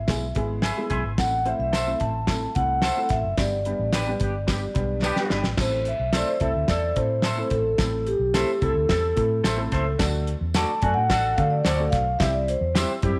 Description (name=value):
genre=uptempo 1960s-style soul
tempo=109 BPM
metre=4/4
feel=straight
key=unclear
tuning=A4 = 445 Hz
part: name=vibraphone with soft mallets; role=melody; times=0.0-12.7 s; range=G4 to A5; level=-28 LUFS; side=equal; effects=none
part: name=vintage muted fingered electric bass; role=bass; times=0.0-13.2 s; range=F#1 to D3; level=-30 LUFS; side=equal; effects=none
part: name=dark upright piano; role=accompaniment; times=0.1-13.2 s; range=G3 to C6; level=-33 LUFS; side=equal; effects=none
part: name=cloth-damped thuddy drum kit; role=drums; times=0.1-13.2 s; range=crash cymbal, hi-hat, kick drum, snare drum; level=-29 LUFS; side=equal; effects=none
part: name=tambourine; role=percussion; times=0.1-12.9 s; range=none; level=-41 LUFS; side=equal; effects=none
part: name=electric guitar through a small old amp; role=stabs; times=0.6-12.9 s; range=D4 to E5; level=-33 LUFS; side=equal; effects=none
part: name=dark horn section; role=second line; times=3.9-13.2 s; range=A3 to A4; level=-36 LUFS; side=equal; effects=none
room=light reverb, studio ambience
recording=none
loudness=-24 LUFS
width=mono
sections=0.0-5.6 A section; 5.6-13.2 B section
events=upright piano fill 0.1-1.2; band accent 3.4-5.6; drum fill 5.0-5.6; vibraphone solo 5.6-13.2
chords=0.0 E; 1.2 Am; 3.4 G; 5.6 Am; 10.0 D; 12.2 C